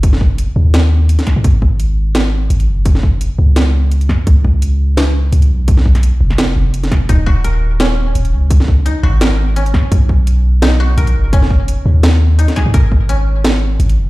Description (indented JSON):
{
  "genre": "half-time drum and bass",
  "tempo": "170 BPM",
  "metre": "4/4",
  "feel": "swing 54% on 16ths, half-time",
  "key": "unclear",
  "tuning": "A4 = 440 Hz",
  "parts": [
    { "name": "long sustained 808-style bass", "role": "bass", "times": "0.0-14.1 s", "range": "Eb1 to Ab2", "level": "-12 LUFS", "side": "equal", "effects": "none" },
    { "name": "drum and bass drum kit", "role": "drums", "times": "0.0-14.0 s", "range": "hi-hat, snare drum", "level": "-18 LUFS", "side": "right 1 dB", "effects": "overdrive, small room ambience" },
    { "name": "electronic kick drum", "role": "drums", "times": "0.0-13.0 s", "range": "none", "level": "-11 LUFS", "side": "equal", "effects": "overdrive, small room ambience" },
    { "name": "koto", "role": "arpeggios", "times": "7.1-14.1 s", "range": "Db4 to Bb4", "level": "-22 LUFS", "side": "left 2 dB", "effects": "vintage 12-bit sampler grit, tape echo" }
  ],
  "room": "little or no reverb",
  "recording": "played on a big sound system in a bare room, large studio reverb",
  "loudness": "-10 LUFS",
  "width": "side -19 dB against mid",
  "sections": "0.0-14.1 A section",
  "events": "none",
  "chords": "0.0 B (rootless); 1.4 Gbsus2; 4.3 Db; 7.1 Ebm; 9.9 B; 12.7 Absus2",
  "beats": "| 0.03 0.39 0.74 1.09 | 1.44 1.80 2.15 2.50 | 2.86 3.21 3.56 3.92 | 4.27 4.62 4.97 5.33 | 5.68 6.03 6.38 6.74 | 7.09 7.44 7.80 8.15 | 8.50 8.86 9.21 9.56 | 9.91 10.27 10.62 10.97 | 11.33 11.68 12.03 12.38 | 12.74 13.09 13.44 13.80"
}